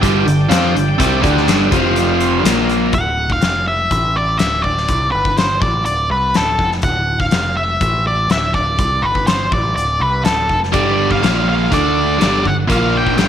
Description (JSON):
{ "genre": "classic rock", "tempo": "123 BPM", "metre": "4/4", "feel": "straight", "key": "unclear", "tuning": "A4 = 440 Hz", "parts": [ { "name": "bright tonewheel organ", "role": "sustained chords", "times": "0.0-2.9 s", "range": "Bb3 to G5", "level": "-22 LUFS", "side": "right 1 dB", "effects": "slow rotary speaker, overdrive" }, { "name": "biting overdriven guitar", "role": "riff", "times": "0.0-2.9, 10.7-13.3 s", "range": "F2 to F4", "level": "-15 LUFS", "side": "right 1 dB", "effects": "none" }, { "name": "growling picked electric bass", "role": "bass", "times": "0.0-13.3 s", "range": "D1 to F2", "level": "-21 LUFS", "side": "right 1 dB", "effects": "overdrive" }, { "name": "huge arena drum kit", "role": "drums", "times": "0.0-13.3 s", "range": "hi-hat, kick drum, snare drum", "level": "-20 LUFS", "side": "left 3 dB", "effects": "none" }, { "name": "octave-fuzz lead guitar", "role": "melody", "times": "2.9-13.3 s", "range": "A4 to G5", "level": "-17 LUFS", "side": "equal", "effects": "distortion, slapback echo" } ], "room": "moderate echo chamber reverb, RT60 2.2 s", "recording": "1960s-style stereo", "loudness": "-13 LUFS", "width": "side -9 dB against mid", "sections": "0.0-2.9 A section; 2.9-13.3 B section", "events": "none", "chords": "0.0 G5; 1.7 F5; 2.4 Bb5; 2.9 D; 3.4 N.C.; 3.9 A5; 4.4 Cadd9/D; 5.1 Gadd11; 5.6 D5; 7.3 N.C.; 7.8 A5; 8.3 Cadd9/D; 9.0 Gadd11; 9.5 D5; 10.7 G5; 11.2 Bb5; 11.7 D5; 12.2 G5; 12.7 Bb5", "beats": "0.02 0.51 | 0.99 1.48 1.96 2.45 | 2.93 3.42 3.91 4.39 | 4.88 5.37 5.86 6.34 | 6.83 7.32 7.81 8.30 | 8.79 9.27 9.76 10.25 | 10.74 11.23 11.72 12.21 | 12.70 13.19" }